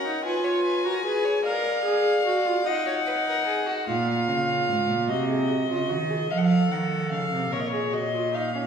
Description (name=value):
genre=classical, baroque-style fugue for string quartet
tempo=49 BPM (dotted quarters)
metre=6/8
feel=straight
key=unclear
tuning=A4 = 444 Hz
part: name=dark violin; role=melody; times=0.0-8.7 s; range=Db5 to Ab5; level=-27 LUFS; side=left 1 dB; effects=none
part: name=rich violin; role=second line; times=0.0-3.9 s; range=Gb4 to Eb5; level=-30 LUFS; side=left 3 dB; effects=none
part: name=rich viola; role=accompaniment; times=0.1-8.6 s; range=Db4 to Bb4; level=-27 LUFS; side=equal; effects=none
part: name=rich cello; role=bass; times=3.9-8.7 s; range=Ab2 to F3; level=-26 LUFS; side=right 3 dB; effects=none
room=wet recital hall reverb, RT60 1.8 s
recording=recorded in a church or concert hall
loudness=-22 LUFS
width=side -7 dB against mid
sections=0.0-8.7 A section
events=none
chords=0.2 Fdim; 1.5 Bb7; 2.7 Ebm; 3.9 Bbm; 5.1 Cdim; 6.3 F7; 7.5 Bbm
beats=0.25 | 1.45 2.67 | 3.88 5.09 | 6.31 7.52